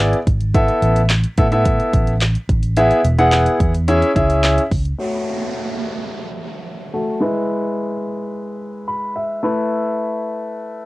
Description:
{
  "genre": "dance-pop",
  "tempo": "108 BPM",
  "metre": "4/4",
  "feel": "straight",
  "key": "F# minor",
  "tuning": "A4 = 440 Hz",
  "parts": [
    { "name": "warm concert grand piano", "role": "accompaniment", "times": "0.0-10.9 s", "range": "G#3 to B5", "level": "-18 LUFS", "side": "left 1 dB", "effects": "sidechain pumping, low-pass filter" },
    { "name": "vintage muted fingered electric bass", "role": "bass", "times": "0.0-4.9 s", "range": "E1 to A2", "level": "-18 LUFS", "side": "equal", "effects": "sidechain pumping" },
    { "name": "deep house drum kit", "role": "drums", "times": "0.1-5.0 s", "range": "handclaps, hi-hat, kick drum, snare drum", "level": "-19 LUFS", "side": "equal", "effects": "none" },
    { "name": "downlifter", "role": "sound effects", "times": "5.0-9.4 s", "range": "none", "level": "-30 LUFS", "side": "right 4 dB", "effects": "none" }
  ],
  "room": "little or no reverb",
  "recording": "home recording on cassette",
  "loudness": "-15 LUFS",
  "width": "side -19 dB against mid",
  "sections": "0.0-5.0 A section; 5.0-10.9 B section",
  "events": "drop 0.0-5.0; filter sweep on grand piano 5.0-10.9; grand piano fill 8.6-9.4",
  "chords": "0.0 E; 0.5 Asus2; 2.8 E; 3.9 C#m; 5.0 F#m; 7.2 E/G#; 9.4 Asus2"
}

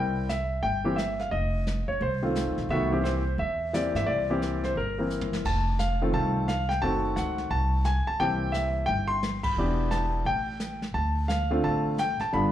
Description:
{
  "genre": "jazz piano trio",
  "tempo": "174 BPM",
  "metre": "4/4",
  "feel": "swing 62% on 8ths",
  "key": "C mixolydian",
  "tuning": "A4 = 439 Hz",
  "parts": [
    { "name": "warm baby grand piano", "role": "melody", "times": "0.0-12.5 s", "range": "D3 to C6", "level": "-27 LUFS", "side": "equal", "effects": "slapback echo" },
    { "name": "upright bass", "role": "bass", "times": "0.0-12.5 s", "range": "E1 to G2", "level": "-30 LUFS", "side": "equal", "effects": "none" },
    { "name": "jazz brush drum kit", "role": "drums", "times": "0.3-12.5 s", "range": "brushed snare drum, crash cymbal, hi-hat, kick drum, ride cymbal, snare drum, toms", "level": "-37 LUFS", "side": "equal", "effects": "none" }
  ],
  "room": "light reverb",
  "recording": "live gig heard through the venue's PA, club reverb",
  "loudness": "-25 LUFS",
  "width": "side -11 dB against mid",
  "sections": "0.0-12.5 A section",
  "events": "drum fill 5.1-5.5; band accent 9.4",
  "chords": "0.0 C7; 1.3 F7; 2.7 C7; 5.5 F7; 6.8 F#dim7; 8.2 C7; 9.6 Em7; 10.3 Gsus2/A; 11.0 Dm7"
}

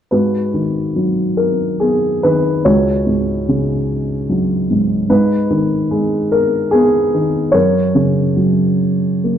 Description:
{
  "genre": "classical, lyrical solo piano",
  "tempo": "73 BPM",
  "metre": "3/4",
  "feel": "uneven beats, rubato",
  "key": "G# minor",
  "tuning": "A4 = 441 Hz",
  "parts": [
    { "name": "dark baby grand piano", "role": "solo", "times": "0.1-9.4 s", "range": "C#2 to C#5", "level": "-13 LUFS", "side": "equal", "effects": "none" }
  ],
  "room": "moderate scoring stage reverb, RT60 1.6 s",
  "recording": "dark, warm production",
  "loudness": "-13 LUFS",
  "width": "side -9 dB against mid",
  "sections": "0.1-9.4 A section",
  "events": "none",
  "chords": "0.1 G#m7; 2.6 C#sus4; 5.1 G#m; 7.5 F#"
}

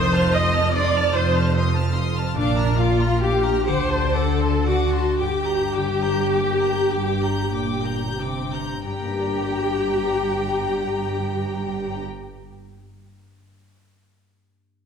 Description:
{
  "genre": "classical, slow romantic movement for symphony orchestra",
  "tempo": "30-51 BPM (dotted quarters)",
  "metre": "6/8",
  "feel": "rubato",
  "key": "G minor",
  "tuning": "A4 = 439 Hz",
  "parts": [
    { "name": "rich studio violin section", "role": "melody", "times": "0.0-12.0 s", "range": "D4 to G5", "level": "-31 LUFS", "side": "left 5 dB", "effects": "none" },
    { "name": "clear studio violin section", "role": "second line", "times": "0.0-12.0 s", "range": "F5 to G6", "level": "-30 LUFS", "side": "left 2 dB", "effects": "none" },
    { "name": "rich studio viola section", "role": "accompaniment", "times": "0.0-12.0 s", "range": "D4 to Eb5", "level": "-23 LUFS", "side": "equal", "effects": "none" },
    { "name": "concert harp", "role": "arpeggios", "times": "0.0-12.7 s", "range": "G2 to D5", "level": "-28 LUFS", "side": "left 6 dB", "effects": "none" },
    { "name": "rich studio cello section", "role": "bass", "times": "0.0-12.0 s", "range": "F2 to D3", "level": "-28 LUFS", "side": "right 2 dB", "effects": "none" },
    { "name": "rich studio double bass section", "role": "bass", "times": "0.0-12.0 s", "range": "F1 to D2", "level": "-26 LUFS", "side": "right 2 dB", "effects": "none" }
  ],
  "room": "wet concert hall reverb, RT60 1.8 s",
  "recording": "minimal, uncompressed stereo recording",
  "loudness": "-19 LUFS",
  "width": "side -7 dB against mid",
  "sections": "0.0-8.9 A section; 8.9-12.8 B section",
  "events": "slowing down 1.1-8.9",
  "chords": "0.0 F7; 2.3 Bb; 3.7 D7; 5.2 Gm"
}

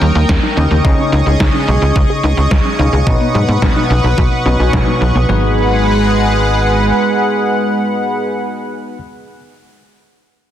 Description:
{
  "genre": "synthwave",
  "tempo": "108 BPM",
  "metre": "4/4",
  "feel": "straight",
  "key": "G# minor",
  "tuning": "A4 = 438 Hz",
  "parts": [
    { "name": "chorused pulse-width pad", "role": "sustained chords", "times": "0.0-8.3 s", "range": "G#3 to D#6", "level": "-16 LUFS", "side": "right 1 dB", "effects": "sidechain pumping" },
    { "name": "warbly dusty pluck", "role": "arpeggios", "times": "0.0-5.5 s", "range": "F#3 to G#4", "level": "-21 LUFS", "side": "right 2 dB", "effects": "chorus, tape echo" },
    { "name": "bell-like tine electric piano", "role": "stabs", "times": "0.0-9.0 s", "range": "B2 to G#5", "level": "-20 LUFS", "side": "left 2 dB", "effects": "medium stereo tremolo, low-pass filter, tape echo" },
    { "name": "tight sequencer bass", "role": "bass", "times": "0.0-6.9 s", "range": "G#1 to G#2", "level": "-14 LUFS", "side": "equal", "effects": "none" },
    { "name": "gated 80s digital drum machine", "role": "drums", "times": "0.0-5.3 s", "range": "hi-hat, snare drum", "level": "-22 LUFS", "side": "equal", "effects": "gated reverb, gated reverb snare, low-pass filter on hats, low-pass filter on snare, low-pass filter on room" },
    { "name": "electronic kick drum", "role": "drums", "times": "0.3-4.8 s", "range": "none", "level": "-15 LUFS", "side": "equal", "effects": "none" }
  ],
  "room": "moderate scoring stage reverb, RT60 2.0 s",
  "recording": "dense, heavily limited modern master",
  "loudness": "-11 LUFS",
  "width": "side -10 dB against mid",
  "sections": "0.0-5.3 A section; 5.3-7.5 B section",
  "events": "filter sweep on drum 0.0-5.3; filter sweep on synth arpeggio sound 0.0-5.3; filter sweep on tine electric piano 0.0-5.3",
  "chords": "0.0 D#7; 0.8 C#sus2; 3.1 Badd9; 5.3 G#m7"
}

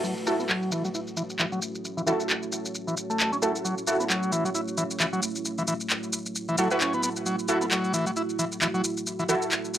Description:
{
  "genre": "breakbeat, breaks",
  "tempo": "133 BPM",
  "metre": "4/4",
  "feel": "swing 57% on 16ths",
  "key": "F# minor",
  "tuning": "A4 = 443 Hz",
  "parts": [
    { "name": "deep dark ambient pad", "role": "sustained chords", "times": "0.0-9.8 s", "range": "A3 to F#5", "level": "-33 LUFS", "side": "right 2 dB", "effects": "chorus, built-in reverb" },
    { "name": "overdriven combo organ", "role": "riff", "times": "0.0-9.3 s", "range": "E3 to F#4", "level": "-29 LUFS", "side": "equal", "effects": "low-pass filter, analog delay" },
    { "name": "electronic shaker and handclaps", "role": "drums", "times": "0.0-9.8 s", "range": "none", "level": "-28 LUFS", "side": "equal", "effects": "low-pass filter on snare, low-pass filter on perc" },
    { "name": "orchestra-hit-like synth stab", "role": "stabs", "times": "0.3-9.4 s", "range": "E4 to B4", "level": "-28 LUFS", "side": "right 1 dB", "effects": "built-in reverb, analog delay" }
  ],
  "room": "light reverb",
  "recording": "dry, gritty hardware recording, transformer saturation",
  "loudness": "-24 LUFS",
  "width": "side -11 dB against mid",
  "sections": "0.0-9.8 A section",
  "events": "filter sweep on transistor combo organ 0.0-9.8",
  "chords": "0.0 F#m7"
}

